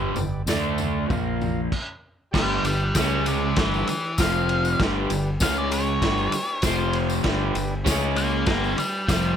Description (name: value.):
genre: garage rock duo or trio.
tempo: 98 BPM.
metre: 4/4.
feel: straight.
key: unclear.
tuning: A4 = 439 Hz.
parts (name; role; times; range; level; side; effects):
combo organ; sustained chords; 0.0-9.4 s; G#3 to F5; -34 LUFS; right 1 dB; none.
crunchy overdriven guitar; riff; 0.0-9.4 s; F2 to D4; -25 LUFS; equal; none.
growling fingered electric bass; bass; 0.0-9.4 s; F1 to D2; -28 LUFS; equal; overdrive.
vintage drum kit; drums; 0.2-9.2 s; crash cymbal, kick drum, ride cymbal, snare drum, toms; -27 LUFS; equal; none.
tambourine; percussion; 0.2-9.2 s; none; -36 LUFS; left 6 dB; none.
octave-fuzz lead guitar; melody; 2.3-9.4 s; B4 to Bb5; -26 LUFS; left 1 dB; distortion.
room: light reverb.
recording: none.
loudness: -21 LUFS.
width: side -8 dB against mid.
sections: 0.0-2.3 A section; 2.3-9.4 B section.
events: stop 1.7-2.3; lead electric guitar solo 2.3-9.4.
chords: 0.5 D5; 1.1 Bb5; 1.7 N.C.; 2.3 G; 2.9 C#5; 3.6 G; 4.2 F5; 4.8 G; 5.4 C#5; 6.0 G; 6.6 F5; 7.2 G; 7.9 C#5; 8.5 G.